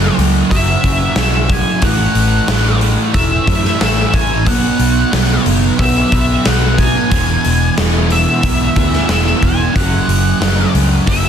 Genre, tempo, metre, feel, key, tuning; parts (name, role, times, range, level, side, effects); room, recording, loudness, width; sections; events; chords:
rock, shoegaze and dream pop; 91 BPM; 4/4; straight; F# minor; A4 = 440 Hz
octave-fuzz lead guitar; melody; 0.0-11.3 s; E5 to G#5; -19 LUFS; left 1 dB; distortion, tape echo
fuzz guitar; riff; 0.0-11.3 s; E2 to B3; -16 LUFS; right 2 dB; distortion, analog chorus
vintage muted fingered electric bass; bass; 0.0-11.3 s; E1 to F#2; -16 LUFS; equal
big rock drum kit; drums; 0.2-11.2 s; hi-hat, kick drum, snare drum; -17 LUFS; equal; soft clipping on kick
studio reverb; dense, heavily limited modern master; -11 LUFS; side -8 dB against mid
0.0-11.3 A section
0.0 F#5; 1.8 A5; 4.5 B5; 7.1 E; 9.8 F#5